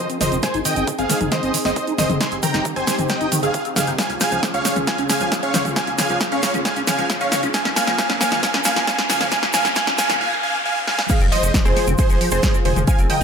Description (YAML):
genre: uplifting trance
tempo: 135 BPM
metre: 4/4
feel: straight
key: F minor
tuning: A4 = 441 Hz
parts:
  - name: big supersaw lead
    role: melody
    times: 0.0-13.2 s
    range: Ab4 to C6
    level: -23 LUFS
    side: right 1 dB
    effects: sidechain pumping, low-pass filter, tape echo
  - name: wide unison pluck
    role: second line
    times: 0.0-13.2 s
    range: C5 to C6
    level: -27 LUFS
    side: right 1 dB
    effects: sidechain pumping, dub echo
  - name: lush unison pad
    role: sustained chords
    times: 0.0-13.2 s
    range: Db3 to C5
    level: -27 LUFS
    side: equal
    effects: chorus, sidechain pumping
  - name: liquid acid bass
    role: arpeggios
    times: 0.0-13.2 s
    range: Eb3 to Eb4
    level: -27 LUFS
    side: left 2 dB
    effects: phaser, ensemble chorus, sidechain pumping, dub echo
  - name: riser, noise sweep and impact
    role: sound effects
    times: 0.2-12.9 s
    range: none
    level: -29 LUFS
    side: equal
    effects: none
  - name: techno drum kit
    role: drums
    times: 0.1-13.2 s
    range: crash cymbal, hi-hat, snare drum, toms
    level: -22 LUFS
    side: equal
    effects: none
  - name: egg shaker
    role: percussion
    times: 0.1-13.2 s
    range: none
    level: -30 LUFS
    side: right 3 dB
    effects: none
  - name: tight sequencer bass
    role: bass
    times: 0.2-13.2 s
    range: F1 to Db2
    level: -28 LUFS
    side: equal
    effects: sidechain pumping
  - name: electronic kick drum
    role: drums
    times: 0.4-13.0 s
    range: none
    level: -21 LUFS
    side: equal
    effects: high-pass filter on kick, high-pass filter on room
room: moderate digital room reverb, RT60 1.1 s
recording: high-pass filter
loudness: -17 LUFS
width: side -6 dB against mid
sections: 0.0-11.1 A section; 11.1-13.2 B section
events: build-up 0.0-11.1; drum fill 0.0-10.2, 10.9; filter sweep on acid bass 0.0-11.1; filter sweep on synth pluck 0.0-11.1; filter sweep 0.0-11.1; riser 0.2-11.1; noise sweep 9.3-11.1; break 10.2-11.1; drop 11.1-13.2; impact 11.1-12.9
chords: 0.4 Ab; 4.0 Db; 7.5 Bbm; 11.1 Fm